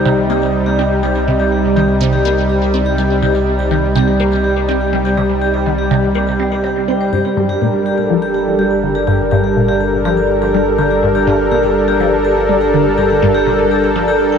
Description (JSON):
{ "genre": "ambient, sequencer-driven space music", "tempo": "123 BPM", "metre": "4/4", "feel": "straight", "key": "G minor", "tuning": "A4 = 440 Hz", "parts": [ { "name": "lush unison pad", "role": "sustained chords", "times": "0.0-14.4 s", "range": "C3 to Bb4", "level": "-14 LUFS", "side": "equal", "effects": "chorus" }, { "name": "vibraphone with medium hard mallets", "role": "arpeggios", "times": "0.0-14.4 s", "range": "G3 to G5", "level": "-19 LUFS", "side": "moving between left 5 dB and right 2 dB", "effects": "auto-pan, tape echo" }, { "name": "round analog bass", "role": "bass", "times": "0.0-14.4 s", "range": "G1 to C2", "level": "-22 LUFS", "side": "equal", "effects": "none" }, { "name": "resonant blip pluck", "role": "riff", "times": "0.1-14.1 s", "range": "G2 to C4", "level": "-19 LUFS", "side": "equal", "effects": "phaser, lush chorus, tape echo" } ], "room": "wet huge ambient reverb, RT60 8.8 s", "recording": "none", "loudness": "-12 LUFS", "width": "side -7 dB against mid", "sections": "0.0-14.4 A section", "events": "none", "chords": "0.0 Cm; 7.1 Gm", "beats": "0.30 0.79 | 1.27 1.76 2.25 2.74 | 3.22 3.71 4.20 4.69 | 5.17 5.66 6.15 6.64 | 7.13 7.61 8.10 8.59 | 9.08 9.57 10.05 10.54 | 11.03 11.52 12.01 12.49 | 12.98 13.47 13.96" }